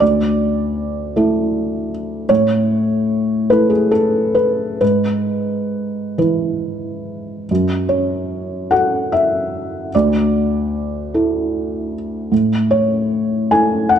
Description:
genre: neoclassical minimalist piano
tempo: 43-54 BPM (dotted quarters)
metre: 6/8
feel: rubato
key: A major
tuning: A4 = 440 Hz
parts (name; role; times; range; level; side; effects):
- felt-muted upright piano; solo; 0.0-14.0 s; D2 to G#5; -15 LUFS; equal; none
room: moderate scoring stage reverb, RT60 1.9 s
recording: dark, warm production, nothing above 10.5 kHz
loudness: -15 LUFS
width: side -8 dB against mid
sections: 0.0-7.5 A section; 7.5-14.0 B section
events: none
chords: 0.0 Dsus2; 2.3 A; 4.8 E/G#; 7.5 F#m; 9.9 Dsus2; 12.3 A

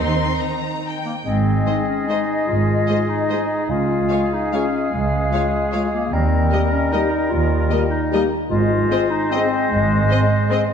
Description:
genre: classical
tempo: 148 BPM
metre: 3/4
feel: uneven beats, rubato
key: Ab major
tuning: A4 = 440 Hz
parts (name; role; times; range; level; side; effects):
- clear chamber violin section; melody; 0.0-10.6 s; Eb5 to C6; -32 LUFS; left 3 dB; none
- clear symphonic violin section; second line; 0.0-10.6 s; Eb4 to Db5; -30 LUFS; left 5 dB; none
- rich chamber viola section; accompaniment; 0.0-10.6 s; G3 to C4; -30 LUFS; right 2 dB; none
- clear chamber double bass section; bass; 0.0-10.0 s; Ab1 to Eb2; -23 LUFS; right 3 dB; none
- warm chamber cello section; bass; 0.0-10.0 s; Db2 to Eb3; -25 LUFS; right 2 dB; none
- warm clarinet; second line; 1.1-10.7 s; Ab3 to F4; -23 LUFS; left 4 dB; none
- silver concert flute; second line; 1.2-10.7 s; Eb5 to F5; -27 LUFS; left 4 dB; none
- warm oboe; second line; 1.2-10.7 s; Ab4 to C5; -29 LUFS; equal; none
- warm bassoon; accompaniment; 1.3-10.7 s; G3 to Ab3; -26 LUFS; left 1 dB; none
- mellow French horn section; sustained chords; 1.7-10.6 s; Ab3 to Ab4; -27 LUFS; left 5 dB; none
room: wet scoring stage reverb, RT60 2.0 s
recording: dark, warm production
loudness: -17 LUFS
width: side -7 dB against mid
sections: 0.0-1.3 A section; 1.3-10.7 B section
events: none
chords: 0.0 Eb; 1.3 Ab; 3.7 Db; 6.1 Eb; 8.5 Ab

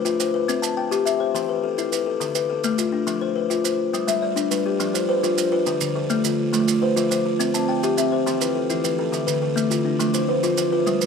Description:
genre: southern african traditional, mbira-style interlocking cycle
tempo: 139 BPM (dotted quarters)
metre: 12/8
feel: straight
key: unclear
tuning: A4 = 440 Hz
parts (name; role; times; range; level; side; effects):
- buzzing kalimba; arpeggios; 0.0-11.1 s; D3 to A5; -21 LUFS; left 6 dB; none
- maracas; percussion; 0.1-11.1 s; none; -29 LUFS; right 11 dB; none
- buzzing kalimba; arpeggios; 4.1-11.1 s; D3 to G5; -24 LUFS; right 9 dB; none
room: moderate echo chamber reverb, RT60 1.9 s, small room ambience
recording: 1960s-style stereo with parts hard left and right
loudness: -20 LUFS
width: side -6 dB against mid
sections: 0.0-10.9 A section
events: none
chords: 0.5 C; 1.3 E5; 2.2 Dm; 3.1 F5; 3.9 G; 4.8 F5; 5.7 Dm; 6.5 F; 7.4 C; 8.3 Em; 9.1 Dm; 10.0 F

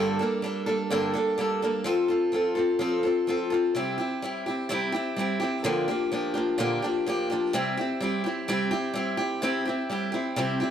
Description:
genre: rock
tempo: 127 BPM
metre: 4/4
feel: straight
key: unclear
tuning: A4 = 442 Hz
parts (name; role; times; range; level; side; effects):
- picked old ladder-braced acoustic guitar; solo; 0.0-10.7 s; G2 to A4; -24 LUFS; equal; none
room: light reverb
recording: none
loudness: -24 LUFS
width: side -9 dB against mid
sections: 0.0-9.4 A section; 9.4-10.7 B section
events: none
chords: 0.0 Gmadd9; 1.9 F; 3.8 C; 5.6 Bb6; 7.5 C

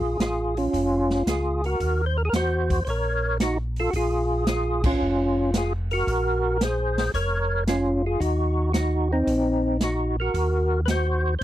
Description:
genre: soul jazz organ trio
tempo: 112 BPM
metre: 4/4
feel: swing 69% on 8ths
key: Bb minor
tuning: A4 = 440 Hz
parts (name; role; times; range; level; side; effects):
- percussive tonewheel organ; melody; 0.0-11.4 s; C4 to Db5; -24 LUFS; equal; slow rotary speaker, overdrive, chorus vibrato
- mellow tonewheel organ; bass; 0.0-11.4 s; F1 to E2; -26 LUFS; equal; slow rotary speaker
- open jazz drum kit; drums; 0.2-11.4 s; crash cymbal, hi-hat, kick drum, snare drum; -27 LUFS; right 1 dB; none
room: little or no reverb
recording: dry, close 1970s-style studio recording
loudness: -21 LUFS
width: side -13 dB against mid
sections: 0.0-11.4 A section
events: band accent 4.7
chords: 0.0 Bbm7; 1.8 Ebm7; 3.9 Bbm7; 8.2 Ebm

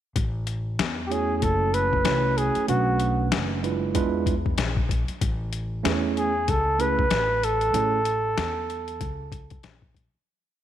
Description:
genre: hip hop, jazz-hop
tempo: 95 BPM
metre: 4/4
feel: swing 61% on 16ths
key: A major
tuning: A4 = 439 Hz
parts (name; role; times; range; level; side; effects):
- upright bass; bass; 0.2-10.2 s; F#1 to E2; -28 LUFS; equal; none
- boom bap sampler-style drum kit; drums; 0.2-10.1 s; hi-hat, kick drum, snare drum; -28 LUFS; left 4 dB; none
- mellow flugelhorn; melody; 1.1-9.6 s; F#4 to B4; -24 LUFS; equal; none
- tine electric piano; accompaniment; 1.1-8.0 s; G#3 to C#5; -28 LUFS; right 8 dB; none
room: moderate echo chamber reverb, RT60 2.2 s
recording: 1960s-style stereo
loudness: -22 LUFS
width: side -11 dB against mid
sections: 0.2-10.3 A section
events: fade-out 7.7-10.3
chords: 0.2 A; 1.4 F#m7; 2.7 Bm9; 4.0 E7b9; 5.2 Amaj7

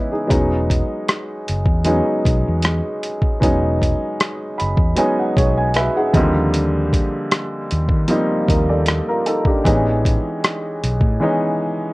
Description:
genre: R&B, neo-soul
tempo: 77 BPM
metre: 4/4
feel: swing 54% on 16ths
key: unclear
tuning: A4 = 440 Hz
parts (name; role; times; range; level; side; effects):
- warm upright piano; accompaniment; 0.0-11.9 s; D3 to B5; -19 LUFS; equal; none
- mellow fretless electric bass; bass; 0.3-11.2 s; E1 to D#3; -20 LUFS; equal; tube saturation
- boom bap sampler-style drum kit; drums; 0.3-11.2 s; hi-hat, kick drum, rim click; -18 LUFS; equal; none
room: light reverb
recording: worn, warbling old tape, cassette tape, warbly pitch drift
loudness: -16 LUFS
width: side -21 dB against mid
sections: 0.0-11.9 A section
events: upright piano fill 4.2-6.5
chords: 0.3 Emaj9; 6.1 D#maj9; 9.6 Amaj9

